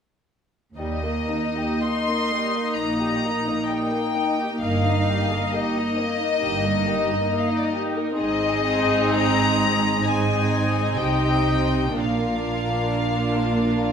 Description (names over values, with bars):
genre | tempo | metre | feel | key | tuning
classical, slow romantic movement for string orchestra | 55-69 BPM | 4/4 | rubato | Eb major | A4 = 440 Hz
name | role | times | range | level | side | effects
rich studio violin section | melody | 0.8-13.9 s | D5 to C6 | -26 LUFS | left 4 dB | none
dark studio violin section | second line | 0.8-13.9 s | G3 to Eb5 | -28 LUFS | left 3 dB | none
warm studio viola section | accompaniment | 0.8-13.9 s | Bb3 to Eb4 | -24 LUFS | right 1 dB | none
dark studio double bass section | bass | 0.8-13.9 s | G1 to Eb2 | -30 LUFS | right 3 dB | none
warm studio cello section | bass | 0.8-13.9 s | Eb2 to C3 | -27 LUFS | right 3 dB | none
room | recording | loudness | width
wet recital hall reverb, RT60 1.3 s | none | -20 LUFS | side -7 dB against mid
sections
0.8-13.9 A section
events
none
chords
0.8 Eb; 4.6 Eb/G; 8.2 Ab; 12.0 Bb